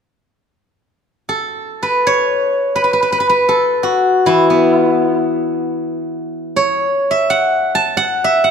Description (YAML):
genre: chinese traditional, Chinese solo plucked strings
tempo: free time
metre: none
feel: none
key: A gong mode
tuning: A4 = 439 Hz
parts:
  - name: steel-string zither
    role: solo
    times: 1.3-8.5 s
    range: E3 to A5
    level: -13 LUFS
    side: equal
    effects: none
room: moderate concert hall reverb, RT60 2.1 s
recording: minimal, uncompressed stereo recording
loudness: -13 LUFS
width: side -6 dB against mid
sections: 0.5-8.5 A section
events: none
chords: none